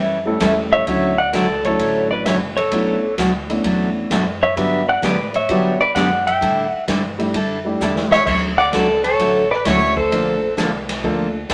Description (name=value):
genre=country, western swing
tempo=130 BPM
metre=4/4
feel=swing 68% on 8ths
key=D major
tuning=A4 = 438 Hz
part: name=picked steel-string acoustic guitar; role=accompaniment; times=0.0-11.5 s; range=B2 to A4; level=-23 LUFS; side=equal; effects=none
part: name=upright bass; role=bass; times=0.0-11.5 s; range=F#1 to B2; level=-35 LUFS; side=equal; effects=none
part: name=dark upright piano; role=accompaniment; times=0.3-11.3 s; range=F#3 to A4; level=-25 LUFS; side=equal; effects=none
part: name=swinging big-band drum kit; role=drums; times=0.4-11.5 s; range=crash cymbal, hi-hat, kick drum, ride cymbal, snare drum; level=-28 LUFS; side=equal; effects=none
part: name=clean lap steel guitar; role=melody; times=0.7-10.5 s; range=A4 to G5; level=-20 LUFS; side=equal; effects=none
part: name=clear fiddle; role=second line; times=8.1-10.5 s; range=A4 to D5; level=-23 LUFS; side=equal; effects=none
room=wet studio reverb, RT60 0.6 s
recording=none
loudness=-18 LUFS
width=mono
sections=0.9-11.5 A section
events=drum fill 7.8-8.3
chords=0.0 A7; 0.9 Dmaj9; 2.7 Bm11; 4.6 Gmaj7; 6.4 A7sus4; 8.3 Dmaj9; 10.1 Bbmaj7